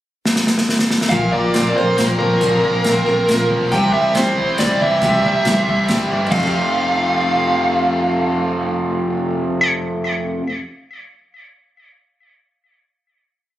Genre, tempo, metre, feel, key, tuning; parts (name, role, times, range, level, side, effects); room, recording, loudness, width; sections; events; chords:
folk rock and heartland rock; 138 BPM; 3/4; straight; F major; A4 = 444 Hz
natural country drum kit; drums; 0.3-6.4 s; crash cymbal, hi-hat, kick drum, snare drum; -21 LUFS; equal
bluesy overdriven lead guitar; melody; 1.1-9.7 s; Bb4 to G5; -19 LUFS; right 1 dB; distortion, tape echo
picked steel-string acoustic guitar; accompaniment; 1.1-10.5 s; F2 to Bb4; -21 LUFS; left 1 dB
biting overdriven guitar; riff; 1.1-10.4 s; F2 to F4; -21 LUFS; right 1 dB
upright bass; bass; 1.1-10.4 s; F1 to C3; -24 LUFS; equal
moderate large studio reverb, RT60 1.2 s, small room ambience; recorded on a phone in the room, club reverb, compression; -15 LUFS; side -13 dB against mid
0.0-1.1 pickup bar; 1.1-6.3 pre-chorus; 6.3-8.9 final chord
drum fill 0.2-1.1
0.0 N.C.; 1.1 Bbsus2; 3.7 C; 6.3 Fadd9